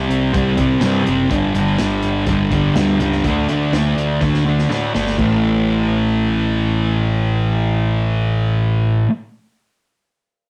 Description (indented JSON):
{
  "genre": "garage rock duo or trio",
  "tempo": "124 BPM",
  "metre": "4/4",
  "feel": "straight",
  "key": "unclear",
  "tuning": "A4 = 441 Hz",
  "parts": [
    { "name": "fuzz guitar", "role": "riff", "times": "0.0-9.1 s", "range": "G2 to D4", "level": "-18 LUFS", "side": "equal", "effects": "distortion, cassette tape" },
    { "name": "growling picked electric bass", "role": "bass", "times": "0.0-9.0 s", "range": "F#1 to A2", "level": "-26 LUFS", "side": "equal", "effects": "overdrive, tube saturation" },
    { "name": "crunchy breakbeat drum kit", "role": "drums", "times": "0.1-5.3 s", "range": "crash cymbal, hi-hat, kick drum, snare drum", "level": "-28 LUFS", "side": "equal", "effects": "cassette tape" }
  ],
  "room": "moderate studio reverb, RT60 0.6 s",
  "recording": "home recording on cassette",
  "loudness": "-17 LUFS",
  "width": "mono",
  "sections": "0.0-5.2 A section; 5.2-9.1 B section",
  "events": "drum fill 4.2-5.2",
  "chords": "0.0 C5; 1.3 G5; 3.2 D5; 5.2 A5"
}